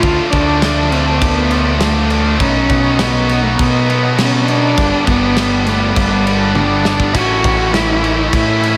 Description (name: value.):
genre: quiet-loud alternative rock.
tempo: 101 BPM.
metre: 4/4.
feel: straight.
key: unclear.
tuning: A4 = 441 Hz.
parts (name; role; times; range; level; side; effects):
dark cello; melody; 0.0-8.8 s; G3 to F#4; -19 LUFS; equal; none.
distorted electric guitar; riff; 0.0-8.8 s; G2 to E4; -19 LUFS; equal; overdrive, slapback echo.
growling picked electric bass; bass; 0.0-8.8 s; G1 to B2; -20 LUFS; equal; overdrive.
loose indie drum kit; drums; 0.0-8.8 s; crash cymbal, kick drum, snare drum, toms; -21 LUFS; equal; none.
room: moderate lush hall reverb, RT60 2.7 s.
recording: big arena sound.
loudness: -14 LUFS.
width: mono.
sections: 0.0-8.8 A section.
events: drum fill 6.6-7.1.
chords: 0.0 Dm; 2.4 B; 4.8 G; 7.1 A.